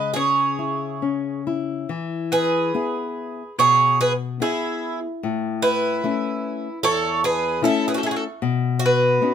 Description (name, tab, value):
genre	fado-style ballad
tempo	67-77 BPM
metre	4/4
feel	rubato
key	E major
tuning	A4 = 441 Hz
part	mandolin	melody	0.0-9.3 s	G#4 to D#5	-20 LUFS	right 2 dB	none
part	picked twelve-string acoustic guitar	second line	0.0-9.3 s	E4 to B4	-27 LUFS	right 4 dB	none
part	nylon-string guitar	accompaniment	0.0-9.3 s	E2 to G#4	-24 LUFS	left 7 dB	none
room	moderate studio reverb, RT60 0.6 s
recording	minimal, uncompressed stereo recording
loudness	-19 LUFS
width	side -8 dB against mid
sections	0.0-1.9 A section; 1.9-9.3 B section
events	none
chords	0.0 C#m; 1.9 E; 5.2 A; 8.4 Badd9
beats	0.14 1.01 | 1.88 2.74 3.58 4.41 | 5.23 6.03 6.83 7.63 | 8.41 9.20